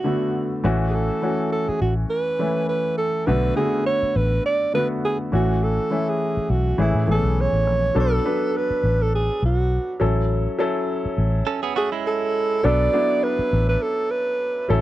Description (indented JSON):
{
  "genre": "soul",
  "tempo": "102 BPM",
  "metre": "4/4",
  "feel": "swing 54% on 16ths",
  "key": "B dorian",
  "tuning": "A4 = 440 Hz",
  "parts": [
    { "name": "mellow alto saxophone", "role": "melody", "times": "0.0-14.7 s", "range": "E4 to D5", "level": "-22 LUFS", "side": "right 2 dB", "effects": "none" },
    { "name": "warm baby grand piano", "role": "accompaniment", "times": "0.0-14.8 s", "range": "D3 to B4", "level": "-24 LUFS", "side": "left 2 dB", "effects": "none" },
    { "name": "vintage muted fingered electric bass", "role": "bass", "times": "0.6-14.8 s", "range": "A1 to A2", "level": "-21 LUFS", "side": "equal", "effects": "none" },
    { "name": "direct-recorded clean electric guitar", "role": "riff", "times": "11.5-12.6 s", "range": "G#3 to A4", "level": "-25 LUFS", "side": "right 9 dB", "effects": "none" }
  ],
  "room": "little or no reverb",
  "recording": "dry, close 1970s-style studio recording",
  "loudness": "-19 LUFS",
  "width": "side -14 dB against mid",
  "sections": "0.0-8.0 A section; 8.0-14.8 B section",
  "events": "none",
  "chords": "0.0 Bm7; 0.6 F#m7/A; 3.3 Bm7; 5.3 F#m7/A; 6.8 Amaj7; 8.0 Bm7; 10.0 F#m7/A; 12.6 Bm7"
}